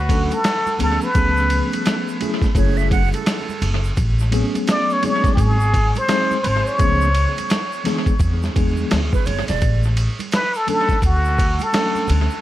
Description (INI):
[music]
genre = hip hop, jazz-hop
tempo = 85 BPM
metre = 4/4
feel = swing 62% on 16ths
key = A major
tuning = A4 = 444 Hz
[part]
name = trumpet with plunger mute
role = melody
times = 0.0-12.1 s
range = F#4 to D5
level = -21 LUFS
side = equal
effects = tape echo
[part]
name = upright bass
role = bass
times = 0.0-12.3 s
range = E1 to E2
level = -19 LUFS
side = equal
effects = none
[part]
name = mellow tine electric piano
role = accompaniment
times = 0.1-12.3 s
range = E3 to A4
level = -24 LUFS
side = left 1 dB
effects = medium stereo tremolo, tape echo
[part]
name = dusty soul sampler-style drum kit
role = drums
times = 0.1-12.3 s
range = hi-hat, kick drum, ride cymbal, snare drum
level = -21 LUFS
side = equal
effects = tape echo
[part]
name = congas and tube shaker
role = percussion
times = 0.1-12.4 s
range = none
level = -34 LUFS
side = right 6 dB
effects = tape echo
[part]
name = breathy jazz flute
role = second line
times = 2.6-3.9, 9.1-9.8 s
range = A4 to F#5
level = -26 LUFS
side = right 11 dB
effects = none
[sound]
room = light reverb, small room ambience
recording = echo-heavy mix, vinyl crackle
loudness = -16 LUFS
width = side -14 dB against mid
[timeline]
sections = 0.0-12.4 A section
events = none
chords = 0.0 Dmaj7; 1.1 C#7b13; 2.6 F#m9; 4.0 Amaj13; 5.4 G#7; 6.8 C#7b13; 8.2 E7; 9.6 A6; 11.0 Dmaj7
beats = 0.44 | 1.15 1.85 2.56 3.27 | 3.97 4.68 5.38 6.09 | 6.80 7.50 8.21 8.91 | 9.62 10.33 11.03 11.74